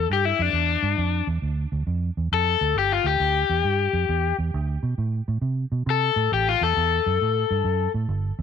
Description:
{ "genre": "electric blues shuffle", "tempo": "135 BPM", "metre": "4/4", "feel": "swing 66% on 8ths", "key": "unclear", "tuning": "A4 = 441 Hz", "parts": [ { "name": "crunchy overdriven guitar", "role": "melody", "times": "0.0-7.9 s", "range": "D4 to A4", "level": "-22 LUFS", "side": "left 10 dB", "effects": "none" }, { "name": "vintage muted fingered electric bass", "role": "bass", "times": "0.0-8.4 s", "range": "G1 to C3", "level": "-24 LUFS", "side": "right 2 dB", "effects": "none" } ], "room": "light reverb", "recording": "none", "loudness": "-21 LUFS", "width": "side -7 dB against mid", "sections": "0.0-8.4 A section", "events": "overdriven electric guitar solo 0.0-8.4", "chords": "0.0 G5; 4.5 D5; 6.3 A5", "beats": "0.09 0.53 | 0.98 1.43 1.87 2.32 | 2.76 3.21 3.65 4.09 | 4.54 4.98 5.43 5.87 | 6.32 6.76 7.20 7.65 | 8.09" }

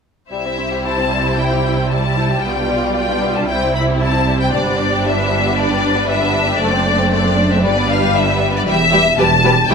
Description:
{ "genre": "quick classical-period movement for string orchestra", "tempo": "115 BPM", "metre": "4/4", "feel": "straight", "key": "C major", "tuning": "A4 = 440 Hz", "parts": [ { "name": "rich studio violin section", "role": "melody", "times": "0.3-9.7 s", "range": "D5 to B5", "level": "-18 LUFS", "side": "left 4 dB", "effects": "none" }, { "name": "warm symphonic violin section", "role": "second line", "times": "0.3-9.7 s", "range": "G3 to D5", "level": "-20 LUFS", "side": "left 4 dB", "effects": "none" }, { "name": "rich symphonic viola section", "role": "accompaniment", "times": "0.3-9.7 s", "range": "G3 to G4", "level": "-21 LUFS", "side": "right 3 dB", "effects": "none" }, { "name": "clear symphonic double bass section", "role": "bass", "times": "0.3-9.7 s", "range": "E1 to C2", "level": "-22 LUFS", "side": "right 4 dB", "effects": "none" }, { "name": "dark symphonic cello section", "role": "bass", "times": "0.3-9.7 s", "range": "C2 to C3", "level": "-21 LUFS", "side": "right 3 dB", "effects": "none" } ], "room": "moderate recital hall reverb, RT60 1.6 s", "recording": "none", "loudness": "-13 LUFS", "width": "side -5 dB against mid", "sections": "0.3-9.7 A section", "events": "none", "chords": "0.3 C; 2.4 G7/B; 3.5 C; 4.5 G; 6.6 D7/F#; 7.6 G; 8.7 Em", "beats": "| 0.31 0.84 1.37 1.90 | 2.43 2.96 3.48 4.01 | 4.53 5.05 5.57 6.09 | 6.60 7.12 7.64 8.16 | 8.67 9.19 9.71" }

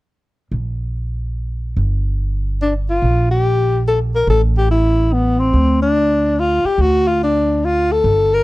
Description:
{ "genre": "jazz, small-group swing and bop", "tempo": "144 BPM", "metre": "3/4", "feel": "swing 65% on 8ths", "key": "unclear", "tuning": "A4 = 440 Hz", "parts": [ { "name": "upright bass", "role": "bass", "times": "0.5-8.4 s", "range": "G1 to D2", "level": "-18 LUFS", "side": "right 1 dB", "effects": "none" }, { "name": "breathy alto saxophone", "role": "melody", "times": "2.6-8.4 s", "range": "Cb4 to Bb4", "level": "-15 LUFS", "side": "left 1 dB", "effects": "none" } ], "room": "small room ambience", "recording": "dry, close 1970s-style studio recording", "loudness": "-14 LUFS", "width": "side -18 dB against mid", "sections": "0.5-3.0 A section; 3.0-8.4 B section", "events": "none", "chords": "0.5 N.C.; 1.8 G5; 3.0 Gm7/Bb; 4.3 A5; 5.5 Dm", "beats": "| 0.51 0.93 1.35 | 1.77 2.19 2.60 | 3.02 3.44 3.86 | 4.28 4.70 5.11 | 5.53 5.95 6.37 | 6.79 7.20 7.62 | 8.04" }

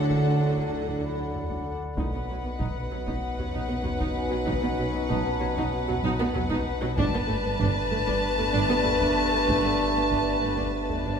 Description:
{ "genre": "cinematic, suspense film score", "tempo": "96 BPM", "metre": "4/4", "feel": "straight", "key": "unclear", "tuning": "A4 = 440 Hz", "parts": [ { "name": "warm chamber violin section", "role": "melody", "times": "0.0-11.2 s", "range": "F#5 to A5", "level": "-32 LUFS", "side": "left 4 dB", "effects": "none" }, { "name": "warm chamber violin section", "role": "second line", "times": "0.0-11.2 s", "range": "A4 to B4", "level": "-32 LUFS", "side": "left 4 dB", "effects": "none" }, { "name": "warm chamber viola section", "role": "accompaniment", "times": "0.0-11.1 s", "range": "F#3 to D#4", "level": "-33 LUFS", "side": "right 2 dB", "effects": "none" }, { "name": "dark French horn section", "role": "sustained chords", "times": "0.0-11.2 s", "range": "A3 to D#4", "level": "-32 LUFS", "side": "left 3 dB", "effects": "none" }, { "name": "glass harmonica", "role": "sustained chords", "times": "0.0-11.2 s", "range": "A4 to A5", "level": "-37 LUFS", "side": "right 2 dB", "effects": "none" }, { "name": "warm trombone section", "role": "sustained chords", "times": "0.0-11.2 s", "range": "F#2 to A3", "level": "-34 LUFS", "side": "right 5 dB", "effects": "none" }, { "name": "dark chamber double bass section", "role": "bass", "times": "0.0-11.1 s", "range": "G1 to D2", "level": "-33 LUFS", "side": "right 3 dB", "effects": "none" }, { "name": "warm chamber cello section", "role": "bass", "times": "0.0-11.1 s", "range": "G2 to D3", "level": "-33 LUFS", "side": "right 3 dB", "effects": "none" }, { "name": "pure sine sub bass", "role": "drone", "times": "0.0-11.2 s", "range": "G1 to D2", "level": "-35 LUFS", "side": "equal", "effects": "none" }, { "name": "vibraphone with soft mallets", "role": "texture", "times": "0.0-7.0 s", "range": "B4 to B5", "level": "-39 LUFS", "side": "equal", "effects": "none" }, { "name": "taiko ensemble", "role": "drums", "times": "0.1-11.2 s", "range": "none", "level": "-35 LUFS", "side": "equal", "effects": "none" } ], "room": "wet recital hall reverb, RT60 1.7 s", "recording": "recorded in a church or concert hall", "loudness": "-24 LUFS", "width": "side -6 dB against mid", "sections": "0.0-11.2 A section", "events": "none", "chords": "0.0 D; 2.0 B; 7.0 Gadd9", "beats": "0.10 0.73 1.35 | 1.98 2.60 3.23 3.85 | 4.48 5.10 5.73 6.35 | 6.98 7.60 8.23 8.85 | 9.48 10.10 10.73" }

